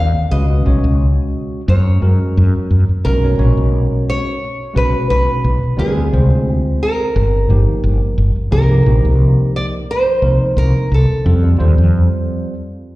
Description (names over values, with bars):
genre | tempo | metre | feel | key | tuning
electric jazz fusion | 88 BPM | 4/4 | straight | unclear | A4 = 440 Hz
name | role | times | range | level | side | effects
nylon-string guitar | melody | 0.0-13.0 s | Ab4 to F5 | -20 LUFS | right 1 dB | plate reverb, slapback echo, analog delay
mellow fretless electric bass | bass | 0.0-12.1 s | G1 to Gb2 | -12 LUFS | equal | none
tine electric piano | accompaniment | 0.3-12.5 s | F3 to Db5 | -22 LUFS | right 1 dB | lush chorus, plate reverb, slapback echo
room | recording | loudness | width
light reverb | live gig heard through the venue's PA, cassette tape, recital hall reverb | -12 LUFS | side -18 dB against mid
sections
0.0-13.0 A section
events
none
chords
0.3 Dbsus2; 1.7 Gbadd9; 3.1 B5; 5.8 Dm7b5; 7.2 Ebadd9/G; 8.5 Cm7; 11.3 Fadd9